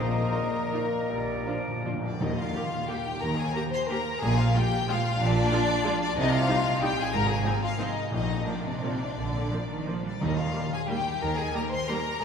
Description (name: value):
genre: classical, orchestral ballroom waltz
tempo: 144-201 BPM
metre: 3/4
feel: rubato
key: Eb major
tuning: A4 = 440 Hz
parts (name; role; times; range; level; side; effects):
- rich chamber violin section; melody; 0.0-12.2 s; D5 to C6; -32 LUFS; left 4 dB; none
- clear oboe; second line; 0.0-2.0 s; D5 to Eb5; -40 LUFS; right 2 dB; none
- mellow clarinet; second line; 0.0-1.9 s; Bb4; -38 LUFS; left 2 dB; none
- rich chamber violin section; second line; 0.0-12.2 s; D4 to C5; -32 LUFS; left 2 dB; none
- silver concert flute; second line; 0.0-1.8 s; Eb5; -42 LUFS; left 2 dB; none
- clear bassoon; accompaniment; 0.0-2.2 s; Bb2 to G3; -39 LUFS; equal; none
- dark French horn section; sustained chords; 0.0-1.9 s; Bb3; -37 LUFS; left 2 dB; none
- rich chamber double bass section; bass; 0.0-12.2 s; Ab1 to Eb2; -32 LUFS; right 2 dB; none
- warm chamber cello section; bass; 0.0-12.2 s; Ab2 to G3; -32 LUFS; right 2 dB; none
- timpani; percussion; 0.0-4.7, 8.1-10.7 s; Bb2 to Eb3; -35 LUFS; left 1 dB; none
- rich chamber viola section; accompaniment; 0.3-12.0 s; F3 to G4; -37 LUFS; right 1 dB; none
- warm trombone section; sustained chords; 0.3-2.0 s; F3 to Eb4; -42 LUFS; right 3 dB; none
room: wet cathedral reverb, RT60 4.2 s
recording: recorded in a church or concert hall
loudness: -25 LUFS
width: side -7 dB against mid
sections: 0.0-2.2 A section; 2.2-12.2 B section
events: timpani fill 1.1-2.2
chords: 0.0 Bbsus4; 1.1 Bb; 2.2 Eb; 4.2 Bb7; 6.2 Cm; 7.1 Fm/Ab; 8.1 Bb; 10.2 Eb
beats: 0.32 0.73 | 1.10 1.48 1.86 | 2.21 2.55 2.90 | 3.22 3.55 3.90 | 4.22 4.55 4.89 | 5.20 5.52 5.85 | 6.16 6.48 6.82 | 7.13 7.45 7.79 | 8.12 8.47 8.83 | 9.17 9.51 9.88 | 10.22 10.55 10.90 | 11.22 11.55 11.89 | 12.21